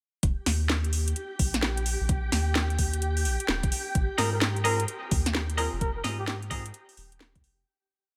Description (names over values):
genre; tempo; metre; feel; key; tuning
UK garage, two-step garage; 129 BPM; 4/4; swing 64% on 16ths; Eb major; A4 = 436 Hz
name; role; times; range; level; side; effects
soft string machine; sustained chords; 0.2-7.7 s; G4 to G5; -40 LUFS; equal; ensemble chorus, sidechain pumping
soft dub sub bass; bass; 0.2-7.6 s; Eb1 to Ab2; -31 LUFS; equal; none
electronic kick drum; drums; 0.2-7.4 s; none; -30 LUFS; equal; none
garage drum kit; drums; 0.2-7.6 s; hi-hat, snare drum; -32 LUFS; equal; none
trumpet with bucket mute; melody; 4.2-6.4 s; G4 to Bb4; -35 LUFS; equal; tape echo
semi-hollow electric guitar; stabs; 4.2-6.6 s; C4 to Eb5; -35 LUFS; equal; spring reverb, tape echo
room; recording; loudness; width
light reverb, digital ambience; none; -28 LUFS; mono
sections
0.2-7.7 groove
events
fade-out 5.2-7.7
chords
0.2 Eb; 4.0 Ab69